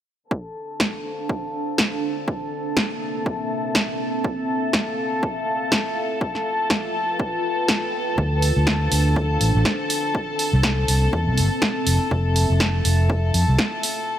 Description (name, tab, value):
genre	piano house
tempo	122 BPM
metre	4/4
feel	swing 57% on 16ths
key	D minor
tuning	A4 = 439 Hz
part	warm studio violin section	sustained chords	0.3-14.2 s	A4 to A5	-26 LUFS	left 2 dB	sidechain pumping, low-pass filter
part	electronic kick drum	drums	0.3-13.7 s	none	-27 LUFS	equal	high-pass filter on kick
part	deep dark ambient pad	texture	1.0-14.1 s	Bb3 to G5	-28 LUFS	right 1 dB	chorus, built-in reverb, sidechain pumping
part	punchy analog drum machine	drums	0.8-13.9 s	hi-hat, snare drum	-23 LUFS	equal	none
part	fingered electric bass	bass	8.2-13.6 s	F1 to F2	-19 LUFS	equal	sidechain pumping
room	light reverb, digital ambience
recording	none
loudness	-19 LUFS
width	side -11 dB against mid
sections	0.3-14.2 A section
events	filter sweep on violin section 0.3-14.2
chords	0.3 Dm7; 10.1 C7; 11.9 Fmaj7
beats	| 0.31 0.80 1.29 1.78 | 2.28 2.77 3.26 3.75 | 4.24 4.74 5.23 5.72 | 6.21 6.70 7.20 7.69 | 8.18 8.67 9.16 9.65 | 10.15 10.64 11.13 11.62 | 12.11 12.61 13.10 13.59 | 14.08